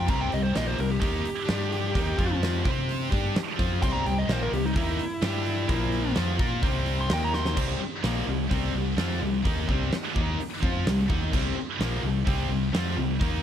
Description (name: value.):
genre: hard rock.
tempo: 128 BPM.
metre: 4/4.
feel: straight.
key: unclear.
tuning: A4 = 444 Hz.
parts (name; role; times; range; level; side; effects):
dark smooth lead guitar; melody; 0.0-7.6 s; Eb4 to C6; -32 LUFS; equal; overdrive, tape echo.
overdriven electric guitar; riff; 0.0-13.4 s; Bb2 to C5; -32 LUFS; left 10 dB; none.
scooped high-gain guitar; riff; 0.0-13.4 s; Bb2 to C5; -33 LUFS; right 13 dB; distortion.
fingered electric bass; bass; 0.0-13.4 s; Bb1 to C3; -29 LUFS; equal; none.
heavy high-gain guitar; riff; 0.1-13.4 s; Bb2 to C5; -35 LUFS; right 1 dB; distortion.
huge arena drum kit; drums; 0.1-13.3 s; crash cymbal, hi-hat, kick drum, snare drum; -29 LUFS; equal; none.
room: light reverb, small room ambience.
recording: none.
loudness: -24 LUFS.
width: side -10 dB against mid.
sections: 0.0-7.6 A section; 7.6-13.4 B section.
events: lead electric guitar solo 0.0-7.6; drum fill 7.3.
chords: 0.0 C5; 1.5 G5; 2.0 Eb; 2.2 F5; 2.7 C5; 5.2 G5; 5.7 Bb5; 6.2 C5; 7.1 Eb5; 7.6 C5.